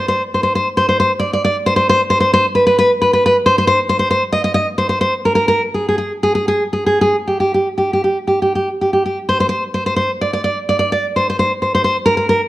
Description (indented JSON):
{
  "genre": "romantic piece for solo classical guitar",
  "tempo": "57-69 BPM",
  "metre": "3/4",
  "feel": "rubato",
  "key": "C minor",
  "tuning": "A4 = 438 Hz",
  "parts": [
    { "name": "nylon-string guitar", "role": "solo", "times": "0.0-12.4 s", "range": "G4 to Eb5", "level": "-13 LUFS", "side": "equal", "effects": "none" }
  ],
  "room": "moderate recital hall reverb, RT60 1.5 s",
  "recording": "dark, warm production",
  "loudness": "-13 LUFS",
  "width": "side -16 dB against mid",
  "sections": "0.0-9.2 A section; 9.2-12.5 B section",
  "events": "none",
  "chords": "none"
}